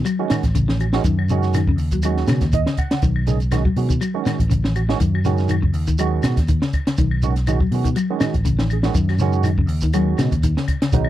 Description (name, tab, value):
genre	afrobeat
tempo	122 BPM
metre	4/4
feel	swing 54% on 16ths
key	B mixolydian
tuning	A4 = 443 Hz
part	clean electric guitar	arpeggios	0.0-11.1 s	C#3 to F#3	-24 LUFS	left 5 dB	lush chorus
part	fingered electric bass	bass	0.0-11.1 s	A1 to B2	-20 LUFS	equal	none
part	compact cocktail drum kit	drums	0.1-11.1 s	hi-hat, kick drum, snare drum	-22 LUFS	equal	none
part	claves	percussion	0.1-11.1 s	none	-35 LUFS	left 8 dB	none
part	shekere	percussion	0.1-11.1 s	none	-27 LUFS	right 2 dB	none
part	barky tine electric piano	accompaniment	0.2-11.1 s	C#3 to F#5	-25 LUFS	right 13 dB	overdrive, analog chorus
room	little or no reverb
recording	dry, close 1970s-style studio recording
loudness	-17 LUFS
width	side -13 dB against mid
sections	0.0-10.9 A section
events	tine electric piano fill 2.3-3.0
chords	0.0 B7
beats	0.06 0.55 | 1.05 1.54 2.04 2.53 | 3.03 3.52 4.01 4.51 | 5.00 5.50 5.99 6.48 | 6.98 7.47 7.97 8.46 | 8.95 9.45 9.94 10.43 | 10.92